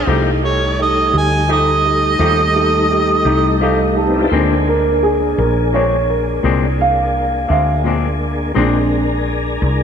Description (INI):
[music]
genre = blues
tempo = 57 BPM (dotted quarters)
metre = 12/8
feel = straight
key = Bb mixolydian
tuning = A4 = 440 Hz
[part]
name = clear harmonica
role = melody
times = 0.0-3.6 s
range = Db5 to Ab5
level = -17 LUFS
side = right 3 dB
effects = overdrive
[part]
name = tonewheel organ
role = sustained chords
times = 0.0-9.8 s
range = G3 to C5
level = -20 LUFS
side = left 2 dB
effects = chorus vibrato, slow rotary speaker
[part]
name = woody fretless electric bass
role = bass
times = 0.0-9.8 s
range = Bb1 to Eb2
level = -19 LUFS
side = equal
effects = none
[part]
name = clean electric guitar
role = accompaniment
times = 0.1-8.8 s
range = Bb2 to G4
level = -23 LUFS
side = left 7 dB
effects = tremolo
[part]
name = dark grand piano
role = accompaniment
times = 0.1-9.0 s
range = Ab3 to A5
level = -18 LUFS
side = right 3 dB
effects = none
[sound]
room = wet lush hall reverb, RT60 3.2 s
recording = dreamy mix soaked in reverb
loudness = -13 LUFS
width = side -7 dB against mid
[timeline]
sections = 0.0-4.3 A section; 4.3-9.8 A section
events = harmonica solo 0.0-4.3; grand piano fill 3.3-4.3; grand piano solo 4.3-9.8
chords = 0.1 F9; 4.3 Bb9